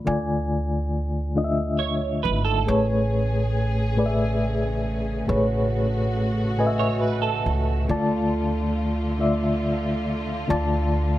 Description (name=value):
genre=R&B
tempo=46 BPM (dotted quarters)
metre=6/8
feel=straight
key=A major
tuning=A4 = 439 Hz
part: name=mellow reed electric piano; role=accompaniment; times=0.0-11.2 s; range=A2 to B5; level=-24 LUFS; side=left 1 dB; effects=fast tremolo
part: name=upright bass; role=bass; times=0.1-11.2 s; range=G#1 to D2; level=-26 LUFS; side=right 1 dB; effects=none
part: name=clean electric guitar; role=second line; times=1.8-2.9, 6.8-7.8 s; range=A4 to C#5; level=-26 LUFS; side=right 10 dB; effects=ensemble chorus
part: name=warm studio string section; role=sustained chords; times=2.6-11.2 s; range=C#3 to G#4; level=-30 LUFS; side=right 2 dB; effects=none
room=moderate studio reverb, RT60 0.8 s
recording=none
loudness=-21 LUFS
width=side -14 dB against mid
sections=0.0-11.2 A section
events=none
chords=0.0 Dm; 2.7 Amaj7; 7.9 Dm